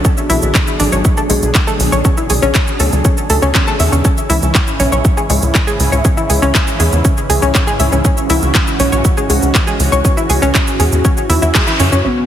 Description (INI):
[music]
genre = melodic techno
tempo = 120 BPM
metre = 4/4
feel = straight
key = C# phrygian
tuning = A4 = 441 Hz
[part]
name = lush unison pad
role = sustained chords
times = 0.0-12.3 s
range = G#2 to G#4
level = -19 LUFS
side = equal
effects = chorus, phaser, vintage 12-bit sampler grit, sidechain pumping
[part]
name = analog pluck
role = arpeggios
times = 0.0-12.1 s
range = G#3 to E5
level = -17 LUFS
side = left 1 dB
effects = chorus, cassette tape, sidechain pumping, ping-pong delay
[part]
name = tight sequencer bass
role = bass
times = 0.0-12.3 s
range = A1 to F#2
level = -15 LUFS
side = equal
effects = sidechain pumping
[part]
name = electronic kick drum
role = drums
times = 0.0-11.6 s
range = none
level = -14 LUFS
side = equal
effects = studio reverb
[part]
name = house drum kit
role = drums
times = 0.0-12.1 s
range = crash cymbal, handclaps, hi-hat, shaker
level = -18 LUFS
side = right 1 dB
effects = low-pass filter on perc, studio reverb, low-pass filter on hats, low-pass filter on snare, low-pass filter on cymbals
[part]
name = analog synth brass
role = melody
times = 12.0-12.3 s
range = B3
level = -16 LUFS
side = left 2 dB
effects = chorus, sidechain pumping
[sound]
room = light reverb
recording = heavily compressed radio sound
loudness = -11 LUFS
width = side -10 dB against mid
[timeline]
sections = 0.0-12.0 A section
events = band accent 11.5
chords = 0.0 Bm; 4.0 C#m